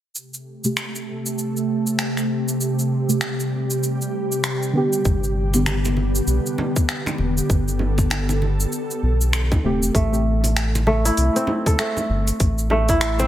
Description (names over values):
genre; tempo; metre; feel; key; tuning
organic downtempo; 98 BPM; 4/4; swing 60% on 16ths; A minor; A4 = 440 Hz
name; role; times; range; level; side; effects
ethereal airy pad; sustained chords; 0.6-9.9 s; C3 to A4; -24 LUFS; equal; ensemble chorus, built-in reverb, sidechain pumping
afro-pop drum kit; drums; 0.2-13.3 s; cabasa, finger snaps, hi-hat; -26 LUFS; equal; overdrive
deep mellow chord stab; accompaniment; 0.6-5.8, 9.6-10.3 s; C3 to G4; -24 LUFS; right 1 dB; chorus, sidechain pumping, digital delay
round analog bass; bass; 5.1-13.3 s; D1 to C2; -21 LUFS; equal; sidechain pumping
electronic kick drum; drums; 5.1-13.0 s; none; -19 LUFS; equal; none
congas; percussion; 5.5-13.3 s; none; -29 LUFS; right 2 dB; none
kora; arpeggios; 9.9-13.3 s; A3 to A4; -21 LUFS; right 1 dB; low-pass filter, digital delay
room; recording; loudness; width
moderate lush hall reverb, RT60 2.2 s; none; -19 LUFS; side -12 dB against mid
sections
0.2-9.9 A section; 9.9-13.3 B section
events
filter sweep on synth stab 0.2-9.9; filter sweep on ambient pad 0.2-9.9; filter sweep on kora 9.9-13.3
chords
0.2 Am7; 5.1 G; 9.9 Am7